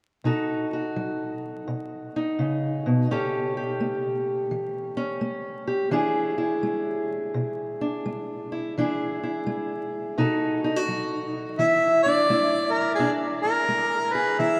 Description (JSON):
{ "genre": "acoustic country blues, solo or duo", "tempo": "85 BPM", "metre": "4/4", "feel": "swing 65% on 8ths", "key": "E mixolydian", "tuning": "A4 = 441 Hz", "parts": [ { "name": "fingerpicked steel-string acoustic guitar", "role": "accompaniment", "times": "0.2-14.6 s", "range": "A2 to A4", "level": "-28 LUFS", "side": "equal", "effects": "none" }, { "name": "mellow harmonica", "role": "melody", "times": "11.6-14.6 s", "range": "G#4 to E5", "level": "-23 LUFS", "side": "equal", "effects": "none" } ], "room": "wet cathedral reverb, RT60 5.9 s", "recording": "in a vast, echoing space, vinyl crackle", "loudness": "-26 LUFS", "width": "mono", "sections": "0.2-11.6 A section; 11.6-14.6 B section", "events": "none", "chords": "0.2 B7; 3.1 A7; 5.9 E7; 10.2 B7; 11.6 E7", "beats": "| 0.25 0.96 1.67 2.38 | 3.09 3.79 4.50 5.21 | 5.92 6.63 7.34 8.04 | 8.75 9.46 10.16 10.87 | 11.58 12.28 12.99 13.69 | 14.40" }